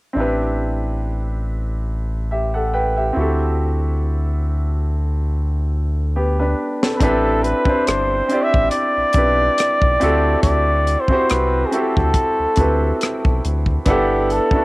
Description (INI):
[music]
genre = R&B, neo-soul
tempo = 70 BPM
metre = 4/4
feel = swing 53% on 16ths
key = A dorian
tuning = A4 = 440 Hz
[part]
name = clear grand piano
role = accompaniment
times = 0.1-14.6 s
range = B3 to G5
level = -21 LUFS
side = right 1 dB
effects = none
[part]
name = round analog bass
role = bass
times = 0.2-14.4 s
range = G1 to D2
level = -20 LUFS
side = equal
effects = none
[part]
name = tight funk drum kit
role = drums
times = 6.8-14.6 s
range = hi-hat, kick drum, rim click, snare drum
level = -20 LUFS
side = equal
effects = cassette tape
[part]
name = warm flugelhorn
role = melody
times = 7.0-14.6 s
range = G4 to E5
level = -18 LUFS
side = equal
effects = none
[sound]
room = light reverb, small room ambience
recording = home recording on cassette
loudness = -16 LUFS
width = side -21 dB against mid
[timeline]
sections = 0.1-7.0 A section; 7.0-14.6 B section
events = drum fill 6.2-7.0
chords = 0.1 Am9; 3.1 D9sus4; 7.0 Am9; 10.0 D9sus4; 13.9 Gmaj9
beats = | 0.15 1.01 1.86 2.72 | 3.58 4.44 5.29 6.15 | 7.01 7.87 8.72 9.58 | 10.44 11.29 12.15 13.01 | 13.87